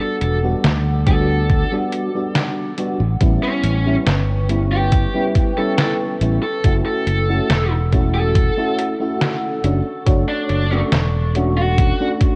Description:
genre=vaporwave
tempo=70 BPM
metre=4/4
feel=straight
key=E dorian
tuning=A4 = 440 Hz
part: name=bluesy overdriven lead guitar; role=melody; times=0.0-12.1 s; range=C#4 to A4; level=-26 LUFS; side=equal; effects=distortion, tape echo
part: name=mellow FM electric piano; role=accompaniment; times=0.0-12.4 s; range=G3 to C#5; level=-25 LUFS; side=equal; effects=ensemble chorus
part: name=warbly tape-like pad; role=sustained chords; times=0.1-12.4 s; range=G3 to E6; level=-31 LUFS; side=equal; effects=chorus, built-in reverb, vintage 12-bit sampler grit
part: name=fingered electric bass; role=bass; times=0.2-11.9 s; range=E1 to D2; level=-21 LUFS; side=equal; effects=none
part: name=detuned 8-bit digital drum machine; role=drums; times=0.2-12.4 s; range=hi-hat, snare drum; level=-24 LUFS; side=equal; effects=vintage 12-bit sampler grit
part: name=electronic kick drum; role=drums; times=1.1-12.4 s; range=none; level=-19 LUFS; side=equal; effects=vintage 12-bit sampler grit
room=light reverb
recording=worn, warbling old tape, cassette tape, warbly pitch drift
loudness=-18 LUFS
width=mono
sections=0.0-12.4 A section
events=none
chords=0.0 Em9 (rootless); 3.2 A9; 6.6 F#m7; 9.6 E13sus4

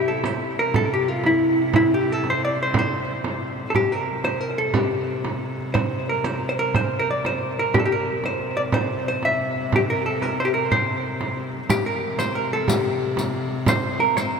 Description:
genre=medieval dance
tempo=121 BPM (dotted quarters)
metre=6/8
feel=straight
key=C mixolydian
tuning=A4 = 437 Hz
part: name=vintage hollow-body jazz guitar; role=melody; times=0.0-14.4 s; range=E4 to E5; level=-22 LUFS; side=equal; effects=tape echo
part: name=warm viola da gamba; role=drone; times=0.0-14.4 s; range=C3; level=-30 LUFS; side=left 1 dB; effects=none
part: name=frame drum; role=percussion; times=0.2-14.4 s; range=none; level=-26 LUFS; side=right 4 dB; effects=none
part: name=riq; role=percussion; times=11.7-14.3 s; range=none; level=-29 LUFS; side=left 3 dB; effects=none
room=wet cathedral reverb, RT60 5.8 s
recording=none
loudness=-20 LUFS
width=side -5 dB against mid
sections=0.0-3.8 A section; 3.8-11.7 B section; 11.7-14.4 B section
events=none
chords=none

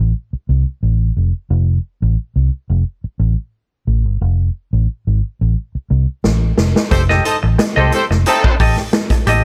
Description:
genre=funk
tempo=89 BPM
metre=4/4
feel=straight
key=F mixolydian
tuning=A4 = 441 Hz
part: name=vintage muted fingered electric bass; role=bass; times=0.0-9.4 s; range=F1 to C2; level=-16 LUFS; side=equal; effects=none
part: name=swinging big-band drum kit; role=drums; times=6.2-9.4 s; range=hi-hat, kick drum, snare drum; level=-19 LUFS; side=equal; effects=none
part: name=clear horn section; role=second line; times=6.9-8.5 s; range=A3 to Eb5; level=-19 LUFS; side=equal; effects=none
part: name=semi-hollow electric guitar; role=accompaniment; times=6.9-9.4 s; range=G4 to Eb5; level=-21 LUFS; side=equal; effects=none
room=small room ambience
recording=none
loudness=-16 LUFS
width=mono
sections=0.0-6.9 A section; 6.9-9.4 B section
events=drum fill 6.2-6.9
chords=0.0 F; 6.9 F9

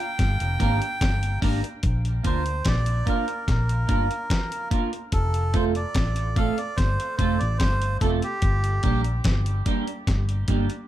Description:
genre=roots reggae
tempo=73 BPM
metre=4/4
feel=straight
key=Bb major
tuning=A4 = 439 Hz
part: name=melodica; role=melody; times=0.0-9.0 s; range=G4 to G5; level=-30 LUFS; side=right 1 dB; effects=dub echo, plate reverb
part: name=vintage muted fingered electric bass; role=bass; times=0.2-10.7 s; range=F1 to D2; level=-24 LUFS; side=equal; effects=none
part: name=dusty soul sampler-style drum kit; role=drums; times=0.2-10.9 s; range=hi-hat, kick drum, snare drum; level=-24 LUFS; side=left 1 dB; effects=none
part: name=clean electric guitar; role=accompaniment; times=0.6-10.7 s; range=G3 to Bb4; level=-29 LUFS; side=right 4 dB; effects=lush chorus, dub echo
room=light reverb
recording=none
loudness=-21 LUFS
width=side -13 dB against mid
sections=0.0-1.8 A section; 1.8-10.9 B section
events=melodica solo 1.8-10.9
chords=0.2 Gm; 1.8 Bb; 5.1 F; 8.4 Gm

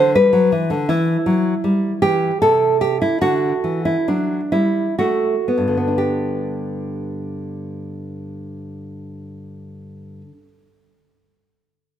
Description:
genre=classical, baroque-style dance for nylon-string guitar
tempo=59-82 BPM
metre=3/4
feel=rubato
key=G major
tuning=A4 = 441 Hz
part: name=nylon-string guitar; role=solo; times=0.0-10.5 s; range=G2 to C5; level=-17 LUFS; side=equal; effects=none
room=light reverb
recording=close, detailed microphones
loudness=-16 LUFS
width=side -10 dB against mid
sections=0.0-6.0 A section; 6.0-9.0 B section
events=slowing down 0.0-6.0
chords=0.0 G; 0.9 Em; 2.4 N.C.; 3.2 D; 6.0 G

